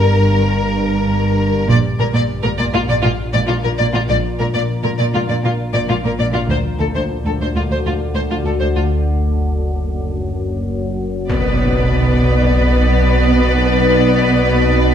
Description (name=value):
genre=cinematic, suspense film score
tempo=100 BPM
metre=4/4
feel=straight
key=B minor from 11.3 s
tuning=A4 = 443 Hz
part: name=rich symphonic violin section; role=melody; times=0.0-14.9 s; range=E#4 to D5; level=-20 LUFS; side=left 3 dB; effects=none
part: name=warm symphonic cello section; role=bass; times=0.0-14.9 s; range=D2 to B2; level=-19 LUFS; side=right 2 dB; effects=none
part: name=organ-like drone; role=drone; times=0.0-14.9 s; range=F#1 to D2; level=-19 LUFS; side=equal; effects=ensemble chorus, built-in reverb
part: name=rich studio double bass section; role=bass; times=1.7-6.6, 11.3-14.9 s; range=A#1 to D2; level=-19 LUFS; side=right 2 dB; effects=none
part: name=rich symphonic violin section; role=second line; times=11.3-14.9 s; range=B4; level=-19 LUFS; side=left 4 dB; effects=none
part: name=clear symphonic viola section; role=accompaniment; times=11.3-14.9 s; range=B3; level=-19 LUFS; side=right 1 dB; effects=none
part: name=impact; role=sound effects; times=11.3-13.7 s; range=none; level=-24 LUFS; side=equal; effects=none
room=moderate scoring stage reverb, RT60 1.6 s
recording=minimal, uncompressed stereo recording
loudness=-14 LUFS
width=side -9 dB against mid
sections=0.0-11.3 A section; 11.3-14.9 B section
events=impact 11.3-13.7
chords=0.0 Gm; 1.7 N.C.; 11.3 Bm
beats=0.49 1.09 | 1.70 2.29 2.90 3.50 | 4.09 4.70 5.29 5.89 | 6.50 7.09 7.70 8.29 | 8.89 9.49 10.10 10.70 | 11.29 11.89 12.49 13.10 | 13.70 14.29 14.89